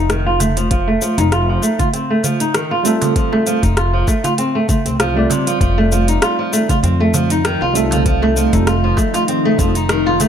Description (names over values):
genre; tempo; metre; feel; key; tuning
organic downtempo; 98 BPM; 4/4; swing 54% on 16ths; F mixolydian; A4 = 441 Hz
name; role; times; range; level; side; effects
flamenco guitar; arpeggios; 0.0-10.3 s; C3 to F4; -16 LUFS; equal; low-pass filter, tape echo
upright bass; bass; 0.0-10.3 s; F1 to F2; -18 LUFS; equal; none
organic electronic drum kit; drums; 0.1-10.3 s; cabasa, hi-hat, rim click; -22 LUFS; left 1 dB; overdrive
darbuka; percussion; 0.4-10.3 s; none; -25 LUFS; right 4 dB; none
electronic kick drum; drums; 0.7-9.7 s; none; -18 LUFS; equal; overdrive
tine electric piano; accompaniment; 2.8-9.7 s; G3 to D5; -23 LUFS; right 3 dB; overdrive, medium stereo tremolo, sidechain pumping, tape echo
ethereal airy pad; sustained chords; 6.3-10.3 s; C3 to Eb4; -22 LUFS; equal; ensemble chorus, built-in reverb, phaser, sidechain pumping
room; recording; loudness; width
light reverb; none; -13 LUFS; side -8 dB against mid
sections
0.0-10.3 A section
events
none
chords
0.0 F7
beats
0.10 | 0.71 1.32 1.94 2.55 | 3.16 3.77 4.39 5.00 | 5.61 6.22 6.84 7.45 | 8.06 8.67 9.29 9.90